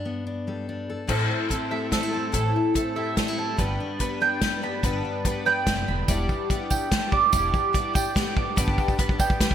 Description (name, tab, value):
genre	indie folk with a building arrangement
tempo	144 BPM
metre	3/4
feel	straight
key	G major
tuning	A4 = 439 Hz
part	fingerpicked steel-string acoustic guitar	accompaniment	0.0-7.3 s	G2 to B4	-32 LUFS	left 2 dB	none
part	picked twelve-string acoustic guitar	accompaniment	1.1-9.5 s	G2 to B4	-29 LUFS	left 4 dB	analog chorus
part	mandolin	arpeggios	1.1-9.5 s	A4 to D6	-26 LUFS	right 6 dB	none
part	upright bass	bass	1.1-8.7 s	E1 to A1	-29 LUFS	equal	none
part	natural country drum kit	drums	1.1-9.5 s	crash cymbal, hi-hat, kick drum, snare drum	-25 LUFS	equal	gated reverb
part	tambourine	percussion	6.1-9.3 s	none	-36 LUFS	right 8 dB	none
room	moderate lush hall reverb, RT60 1.7 s, small room ambience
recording	bright 1980s-style digital production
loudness	-22 LUFS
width	side -9 dB against mid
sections	0.0-1.1 A section; 1.1-9.5 B section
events	build-up 1.1-9.5; drum fill 1.1-9.5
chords	0.0 G; 1.1 Am; 3.6 G; 6.1 Em7; 8.6 G